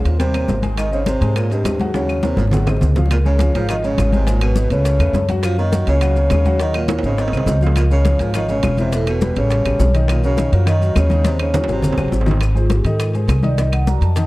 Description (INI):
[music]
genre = Afro-Cuban jazz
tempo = 206 BPM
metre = 4/4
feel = straight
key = Ab major, Db major from 3.1 s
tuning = A4 = 443 Hz
[part]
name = vibraphone with soft mallets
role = melody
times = 0.0-14.3 s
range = F4 to Bb5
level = -23 LUFS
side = equal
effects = tape echo
[part]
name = breathy baritone saxophone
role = second line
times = 0.0-12.2 s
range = G2 to F3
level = -25 LUFS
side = right 2 dB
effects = tape echo
[part]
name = warm grand piano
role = accompaniment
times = 0.0-14.3 s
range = Eb3 to Ab5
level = -25 LUFS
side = left 2 dB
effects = none
[part]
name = upright bass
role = bass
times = 0.0-14.3 s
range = Fb1 to Ab2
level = -17 LUFS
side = equal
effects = none
[part]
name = congas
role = percussion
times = 0.0-14.3 s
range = none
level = -24 LUFS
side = left 2 dB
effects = tape echo
[part]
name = bongos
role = percussion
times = 0.1-14.3 s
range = none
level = -32 LUFS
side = left 5 dB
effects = none
[part]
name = maracas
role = percussion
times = 0.1-14.3 s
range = none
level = -41 LUFS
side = left 4 dB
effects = tape echo
[part]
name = timbales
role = percussion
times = 0.1-14.3 s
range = none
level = -30 LUFS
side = right 5 dB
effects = tape echo
[part]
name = claves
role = percussion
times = 0.4-13.9 s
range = none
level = -35 LUFS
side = left 4 dB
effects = tape echo
[sound]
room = light reverb, small room ambience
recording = echo-heavy mix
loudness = -14 LUFS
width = side -19 dB against mid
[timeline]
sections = 0.0-3.1 A section; 3.1-12.4 B section; 12.4-14.3 C section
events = drum fill 1.9-3.1, 6.9-7.8, 11.2-12.4; vibraphone solo 12.4-14.3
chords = 0.2 Eb6; 0.8 Ab; 1.9 Ebm7; 2.5 Ab7; 3.1 Db6; 4.3 Abm; 4.9 A69/C#; 5.4 Gb; 6.6 Ebm7; 7.2 Ab; 7.8 Db6; 8.9 Em; 9.5 A9; 10.1 Cbmaj9; 11.2 Ebm7; 11.8 Ab7; 12.4 Abadd9; 13.6 Cm7b5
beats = 0.19 0.49 | 0.78 1.07 1.36 1.65 | 1.95 2.24 2.53 2.82 | 3.11 3.40 3.69 3.98 | 4.28 4.57 4.86 5.15 | 5.44 5.73 6.02 6.31 | 6.60 6.89 7.18 7.47 | 7.76 8.05 8.35 8.63 | 8.93 9.22 9.51 9.80 | 10.09 10.38 10.67 10.96 | 11.25 11.54 11.83 12.12 | 12.41 12.71 13.00 13.29 | 13.58 13.87 14.16